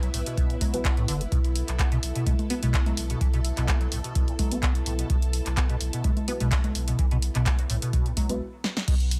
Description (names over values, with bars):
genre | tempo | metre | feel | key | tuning
acid house | 127 BPM | 4/4 | swing 53% on 16ths | unclear | A4 = 441 Hz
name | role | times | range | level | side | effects
string machine, full ensemble | sustained chords | 0.0-9.2 s | B3 to B4 | -39 LUFS | equal | ensemble chorus, sidechain pumping
liquid acid bass | riff | 0.0-8.9 s | A2 to B3 | -33 LUFS | equal | phaser, ensemble chorus, sidechain pumping
warm sub bass | bass | 0.0-9.2 s | F#1 to B1 | -32 LUFS | equal | sidechain pumping
punchy analog drum machine | drums | 0.0-9.2 s | congas, crash cymbal, handclaps, hi-hat, snare drum | -34 LUFS | equal | none
electronic kick drum | drums | 0.4-9.0 s | none | -28 LUFS | equal | overdrive
deep mellow chord stab | stabs | 0.7-8.4 s | B3 to B4 | -36 LUFS | equal | chorus, phaser, delay
room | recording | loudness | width
little or no reverb | none | -26 LUFS | mono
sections
0.0-8.9 A section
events
stop 8.4-8.9; drum fill 8.6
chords
0.0 B5